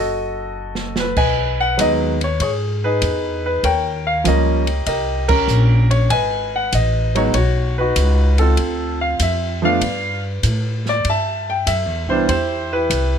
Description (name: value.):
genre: jazz piano trio.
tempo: 97 BPM.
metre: 4/4.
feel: swing 69% on 8ths.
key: unclear.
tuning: A4 = 440 Hz.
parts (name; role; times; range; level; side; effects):
warm grand piano; melody; 0.0-13.2 s; E3 to A5; -19 LUFS; equal; none.
upright bass; bass; 0.0-13.2 s; F#1 to A2; -20 LUFS; equal; none.
open jazz drum kit; drums; 0.8-13.1 s; crash cymbal, hi-hat, kick drum, ride cymbal, snare drum; -26 LUFS; right 1 dB; none.
room: little or no reverb.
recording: close, detailed microphones.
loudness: -16 LUFS.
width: side -8 dB against mid.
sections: 0.0-1.2 A section; 1.2-13.2 B section.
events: drum fill 0.5-1.2; band accent 5.2-5.5.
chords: 0.0 B7 (rootless); 1.2 Emaj7; 3.6 D#7; 6.1 G#m7; 8.6 Dm7; 9.8 G; 11.0 Cmaj7.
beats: 0.54 | 1.16 1.78 2.40 3.02 | 3.63 4.25 4.87 5.49 | 6.10 6.72 7.34 7.96 | 8.57 9.19 9.81 10.43 | 11.05 11.66 12.28 12.90.